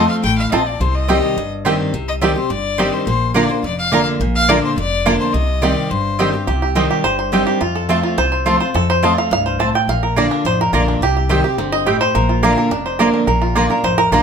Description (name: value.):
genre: bluegrass.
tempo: 212 BPM.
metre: 4/4.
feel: straight.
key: C dorian.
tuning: A4 = 440 Hz.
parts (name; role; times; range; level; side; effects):
bluegrass banjo; melody; 0.0-14.2 s; A3 to A5; -18 LUFS; right 2 dB; none.
clear fiddle; melody; 0.0-6.3 s; C5 to G5; -21 LUFS; left 4 dB; none.
picked steel-string acoustic guitar; accompaniment; 0.0-14.2 s; F2 to G4; -19 LUFS; left 1 dB; none.
mandolin; stabs; 0.0-14.2 s; Bb3 to Bb5; -20 LUFS; right 3 dB; slapback echo.
upright bass; bass; 0.0-14.2 s; F1 to F2; -22 LUFS; equal; none.
room: moderate studio reverb, RT60 0.7 s.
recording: none.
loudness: -14 LUFS.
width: side -7 dB against mid.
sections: 0.0-6.5 A section; 6.5-14.2 B section.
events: five-string banjo solo 6.5-14.2.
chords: 0.0 F; 0.8 Cm; 3.1 Bb; 5.3 Cm; 7.6 F; 9.9 Bb; 11.0 Cm; 12.1 Bb.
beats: 0.23 0.52 | 0.80 1.09 1.37 1.65 | 1.94 2.22 2.50 2.79 | 3.07 3.36 3.64 3.92 | 4.21 4.49 4.78 5.06 | 5.34 5.63 5.91 6.19 | 6.48 6.76 7.05 7.33 | 7.61 7.90 8.18 8.46 | 8.75 9.03 9.32 9.60 | 9.88 10.17 10.45 10.73 | 11.02 11.30 11.58 11.87 | 12.15 12.43 12.71 13.00 | 13.28 13.56 13.84 14.12.